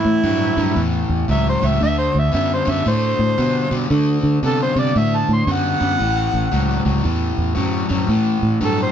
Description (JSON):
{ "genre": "electric blues shuffle", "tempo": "114 BPM", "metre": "4/4", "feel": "swing 63% on 8ths", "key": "unclear", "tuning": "A4 = 440 Hz", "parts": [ { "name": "overdriven harmonica", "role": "melody", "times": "0.0-8.9 s", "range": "E4 to C6", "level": "-21 LUFS", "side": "right 2 dB", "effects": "none" }, { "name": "overdriven semi-hollow guitar", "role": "riff", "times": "0.0-8.9 s", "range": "A2 to B3", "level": "-21 LUFS", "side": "left 3 dB", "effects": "none" }, { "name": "fingered electric bass", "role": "bass", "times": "0.1-8.9 s", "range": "A1 to D3", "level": "-19 LUFS", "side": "equal", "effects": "none" } ], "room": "moderate small room ambience, RT60 0.5 s", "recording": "band playing live in one room", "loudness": "-16 LUFS", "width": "side -9 dB against mid", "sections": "0.0-8.9 A section", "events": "harmonica solo 0.0-8.9", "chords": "0.0 A7; 1.8 D7; 6.0 A" }